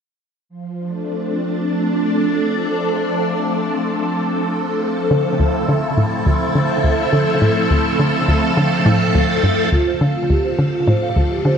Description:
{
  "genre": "ambient, sequencer-driven space music",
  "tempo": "104 BPM",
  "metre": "4/4",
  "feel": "straight",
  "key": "unclear",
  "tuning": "A4 = 441 Hz",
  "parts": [
    { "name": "phased string machine", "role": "sustained chords", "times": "0.6-11.6 s", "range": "F3 to A4", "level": "-18 LUFS", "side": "equal", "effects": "ensemble chorus, phaser, shimmer reverb" },
    { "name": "hollow square pluck", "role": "riff", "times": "5.1-11.6 s", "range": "D2 to D3", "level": "-17 LUFS", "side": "equal", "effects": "chorus, tape echo" },
    { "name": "vibraphone with soft mallets", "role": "arpeggios", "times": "9.7-11.6 s", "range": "F4 to F5", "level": "-20 LUFS", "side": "right 2 dB", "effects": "auto-pan, low-pass filter, tape echo" }
  ],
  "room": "wet scoring stage reverb, RT60 1.9 s, studio reverb",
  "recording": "none",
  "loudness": "-15 LUFS",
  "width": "side -7 dB against mid",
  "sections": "0.5-9.7 A section; 9.7-11.6 B section",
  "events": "filter sweep on string machine 0.5-9.7; filter sweep on vibraphone 9.7-11.6",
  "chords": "0.5 Dm7"
}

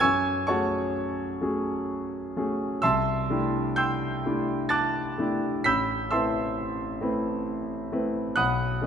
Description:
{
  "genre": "classical, impressionist solo piano",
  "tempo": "65 BPM",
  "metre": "3/4",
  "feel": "rubato",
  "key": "unclear",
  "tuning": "A4 = 441 Hz",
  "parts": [
    { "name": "clear concert grand piano", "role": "solo", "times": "0.0-8.9 s", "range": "A1 to B6", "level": "-24 LUFS", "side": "equal", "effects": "none" }
  ],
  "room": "moderate concert hall reverb, RT60 2.3 s",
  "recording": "none",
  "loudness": "-24 LUFS",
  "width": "side -8 dB against mid",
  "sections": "0.0-8.9 A section",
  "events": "none",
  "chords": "0.0 F#madd9; 2.8 C69; 5.6 Amadd9"
}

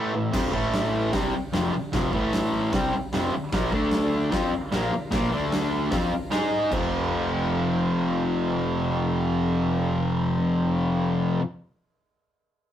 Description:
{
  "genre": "garage rock duo or trio",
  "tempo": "150 BPM",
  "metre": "4/4",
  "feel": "straight",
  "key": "F major",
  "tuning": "A4 = 439 Hz",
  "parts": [
    { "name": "combo organ", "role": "sustained chords", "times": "0.0-0.3, 3.7-10.7 s", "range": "D4 to F5", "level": "-39 LUFS", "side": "equal", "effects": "none" },
    { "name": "fuzz guitar", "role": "riff", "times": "0.0-11.4 s", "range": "F2 to Ab4", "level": "-23 LUFS", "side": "equal", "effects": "distortion" },
    { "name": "fuzz picked electric bass", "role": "bass", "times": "0.3-11.4 s", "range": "F1 to Ab2", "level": "-35 LUFS", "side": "equal", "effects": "overdrive" },
    { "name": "oversized low-tuned drum kit", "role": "drums", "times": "0.3-6.8 s", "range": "crash cymbal, hi-hat, kick drum, snare drum", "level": "-30 LUFS", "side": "equal", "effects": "none" }
  ],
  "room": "moderate studio reverb, RT60 0.5 s",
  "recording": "rough rehearsal-room recording",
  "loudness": "-22 LUFS",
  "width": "side -10 dB against mid",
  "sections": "0.3-6.7 A section; 6.7-9.9 B section",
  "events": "break 0.0-0.3",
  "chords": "0.3 F5; 0.5 A5; 1.1 F5; 2.1 A5; 2.7 F5; 3.5 Bb5; 3.7 D5; 4.3 Bb5; 5.3 D5; 5.9 Bb5; 6.3 Ab5; 6.7 F"
}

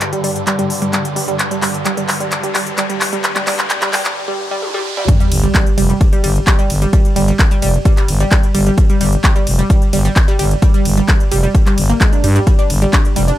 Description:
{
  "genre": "driving peak-time techno",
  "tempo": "130 BPM",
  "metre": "4/4",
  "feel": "straight",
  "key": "unclear",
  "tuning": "A4 = 440 Hz",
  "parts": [
    { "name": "swarming drone", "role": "drone", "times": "0.0-4.2 s", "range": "G2 to D3", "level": "-26 LUFS", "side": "equal", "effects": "built-in reverb, sidechain pumping" },
    { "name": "techno drum kit", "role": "drums", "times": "0.0-13.4 s", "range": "handclaps, hi-hat, ride cymbal, toms", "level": "-20 LUFS", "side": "equal", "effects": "sidechain pumping on hats, high-pass filter on hats, high-pass filter on snare, sidechain pumping on toms, high-pass filter on toms, sidechain pumping on cymbals, high-pass filter on cymbals, high-pass filter on room" },
    { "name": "riser and sub drop", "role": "sound effects", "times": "0.7-6.9 s", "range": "none", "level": "-26 LUFS", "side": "left 1 dB", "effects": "none" },
    { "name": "analog pluck", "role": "riff", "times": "0.1-13.3 s", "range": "G3 to D4", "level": "-19 LUFS", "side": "right 1 dB", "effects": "chorus, phaser, tube saturation, sidechain pumping, dub echo" },
    { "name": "electronic kick drum", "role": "drums", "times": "5.1-13.0 s", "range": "none", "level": "-12 LUFS", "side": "equal", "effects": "none" },
    { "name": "growling FM bass", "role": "bass", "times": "5.3-13.3 s", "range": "F1 to G2", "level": "-14 LUFS", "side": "equal", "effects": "sidechain pumping" }
  ],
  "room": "light reverb, digital ambience",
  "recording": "high-pass filter",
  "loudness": "-12 LUFS",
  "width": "side -14 dB against mid",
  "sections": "0.0-5.1 A section; 5.1-13.4 B section",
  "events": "build-up 0.0-5.1; drum fill 0.0-4.2, 4.6-5.1; filter sweep on synth arpeggio sound 0.0-5.1; riser 0.7-5.1; break 4.2-5.1; drop 5.1-13.4; impact 5.1-6.9",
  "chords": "0.0 G5; 5.1 N.C."
}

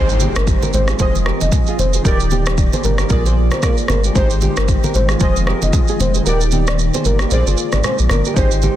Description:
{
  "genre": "afrobeats",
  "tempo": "114 BPM",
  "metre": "4/4",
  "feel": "swing 58% on 16ths",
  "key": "Eb major",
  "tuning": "A4 = 440 Hz",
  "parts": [
    { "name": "soft octave-layered synth lead", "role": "melody", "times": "0.0-8.5 s", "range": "G4 to Eb5", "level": "-23 LUFS", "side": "left 1 dB", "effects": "chorus, tremolo, ping-pong delay" },
    { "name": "warm analog keys", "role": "accompaniment", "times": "0.0-8.8 s", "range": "Eb3 to Eb5", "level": "-24 LUFS", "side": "equal", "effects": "chorus, phaser" },
    { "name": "hollow soft pad", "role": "sustained chords", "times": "0.3-8.8 s", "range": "D3 to D5", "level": "-26 LUFS", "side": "left 1 dB", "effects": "ensemble chorus" },
    { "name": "nylon-string guitar", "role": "riff", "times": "0.0-8.8 s", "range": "Eb4 to D5", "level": "-26 LUFS", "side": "right 6 dB", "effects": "ping-pong delay" },
    { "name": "warm sub bass", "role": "bass", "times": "0.0-8.7 s", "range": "Eb1 to Bb1", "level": "-17 LUFS", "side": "equal", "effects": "none" },
    { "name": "impact", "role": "sound effects", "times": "0.0-2.0 s", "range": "none", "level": "-27 LUFS", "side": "equal", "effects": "none" },
    { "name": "deep house drum kit", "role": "drums", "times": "0.1-8.8 s", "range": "kick drum, rim click, shaker", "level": "-18 LUFS", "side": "equal", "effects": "soft clipping on snare" },
    { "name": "congas", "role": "percussion", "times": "0.2-8.8 s", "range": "none", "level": "-25 LUFS", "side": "left 2 dB", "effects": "none" }
  ],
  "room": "little or no reverb",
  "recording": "dense, heavily limited modern master",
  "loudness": "-13 LUFS",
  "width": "side -12 dB against mid",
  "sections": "0.0-8.8 A section",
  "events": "impact 0.0-2.0; kick muted 6.3-8.4",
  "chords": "0.0 Abmaj7; 1.0 Fm7; 2.0 Ebmaj7; 3.1 Bb7; 4.2 Abmaj7; 5.2 Fm7; 6.3 Ebmaj7; 7.3 Bb7"
}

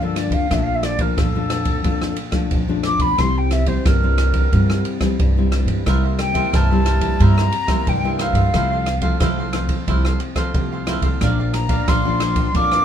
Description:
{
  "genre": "samba and choro",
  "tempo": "90 BPM",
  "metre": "4/4",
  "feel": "straight",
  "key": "unclear",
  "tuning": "A4 = 440 Hz",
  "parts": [
    { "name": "mellow concert flute", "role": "melody", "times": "0.0-12.8 s", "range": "A4 to D6", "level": "-22 LUFS", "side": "equal", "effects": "none" },
    { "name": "nylon-string guitar", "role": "accompaniment", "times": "0.0-12.8 s", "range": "F2 to E4", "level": "-23 LUFS", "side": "left 4 dB", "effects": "none" },
    { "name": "upright bass", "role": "bass", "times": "0.0-12.8 s", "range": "Bb1 to G2", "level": "-20 LUFS", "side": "right 1 dB", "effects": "none" },
    { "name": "open jazz drum kit", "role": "drums", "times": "0.2-12.8 s", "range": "kick drum, ride cymbal, rim click", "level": "-22 LUFS", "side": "right 1 dB", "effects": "none" },
    { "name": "cavaquinho", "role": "accompaniment", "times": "5.9-12.8 s", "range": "D4 to F5", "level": "-27 LUFS", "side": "right 4 dB", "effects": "none" }
  ],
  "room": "moderate small room reverb, RT60 0.5 s",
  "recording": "minimal, uncompressed stereo recording",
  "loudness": "-16 LUFS",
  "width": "side -9 dB against mid",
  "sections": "0.0-12.8 A section",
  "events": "flute solo 0.0-12.8",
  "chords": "0.0 Gm7; 0.5 Bbmaj7; 3.2 C; 5.9 C7; 8.5 Fmaj7/C; 11.2 Bb"
}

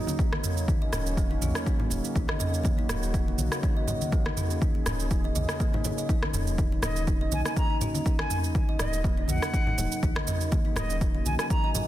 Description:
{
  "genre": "afro house",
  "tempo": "122 BPM",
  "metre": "4/4",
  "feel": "swing 55% on 16ths",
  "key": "Eb minor",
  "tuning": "A4 = 443 Hz",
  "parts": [
    { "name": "warm analog pad", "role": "sustained chords", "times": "0.0-11.9 s", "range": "Db3 to Ab4", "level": "-37 LUFS", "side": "equal", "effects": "chorus, sidechain pumping" },
    { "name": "kalimba", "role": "arpeggios", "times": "0.0-11.9 s", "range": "Bb3 to Eb5", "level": "-35 LUFS", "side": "equal", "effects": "sidechain pumping, digital delay" },
    { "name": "deep house drum kit", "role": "drums", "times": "0.1-11.9 s", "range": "rim click, shaker, toms", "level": "-32 LUFS", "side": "right 1 dB", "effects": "soft clipping on snare" },
    { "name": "congas", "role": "percussion", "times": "0.1-11.9 s", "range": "none", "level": "-35 LUFS", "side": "left 1 dB", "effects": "none" },
    { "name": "electronic kick drum", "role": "drums", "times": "0.2-11.6 s", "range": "none", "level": "-27 LUFS", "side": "equal", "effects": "none" },
    { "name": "warm sub bass", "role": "bass", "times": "0.9-11.4 s", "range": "Eb1 to Bb1", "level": "-31 LUFS", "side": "equal", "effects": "sidechain pumping" },
    { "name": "silver concert flute", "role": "melody", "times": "6.8-11.7 s", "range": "Eb5 to Bb5", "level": "-34 LUFS", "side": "equal", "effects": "digital delay" }
  ],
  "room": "light reverb",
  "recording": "dense, heavily limited modern master",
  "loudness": "-24 LUFS",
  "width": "side -14 dB against mid",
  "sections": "0.0-11.9 A section",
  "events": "none",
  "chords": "0.0 Ebm7; 2.6 Gb/Eb; 6.6 Ebm7"
}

